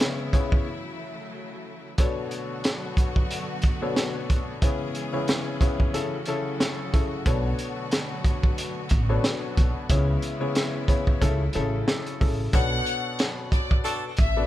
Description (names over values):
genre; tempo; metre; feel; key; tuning
hip hop, boom-bap hip-hop; 91 BPM; 4/4; swing 57% on 16ths; B dorian; A4 = 440 Hz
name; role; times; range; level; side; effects
warm upright piano; accompaniment; 0.0-14.5 s; B2 to D5; -30 LUFS; left 3 dB; none
rich symphonic string section; sustained chords; 0.0-12.5 s; C#3 to G#4; -36 LUFS; equal; none
crunchy breakbeat drum kit; drums; 0.0-14.4 s; hi-hat, kick drum, snare drum; -24 LUFS; equal; none
upright bass; bass; 7.3-14.4 s; A1 to C#2; -26 LUFS; equal; none
warm chamber violin section; melody; 12.5-14.5 s; D5 to F#5; -29 LUFS; left 4 dB; digital delay
clear saxophone section; stabs; 13.8-14.1 s; D4 to A4; -30 LUFS; equal; digital delay
room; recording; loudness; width
little or no reverb; none; -23 LUFS; side -14 dB against mid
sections
0.0-12.5 A section; 12.5-14.5 B section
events
break 0.7-2.0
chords
0.0 C#m7; 0.7 F#m7/C#; 2.0 Bm7; 4.6 C#m7; 5.9 F#m7/C#; 7.3 Bm7; 9.9 C#m7; 11.2 F#m7; 12.5 Bm7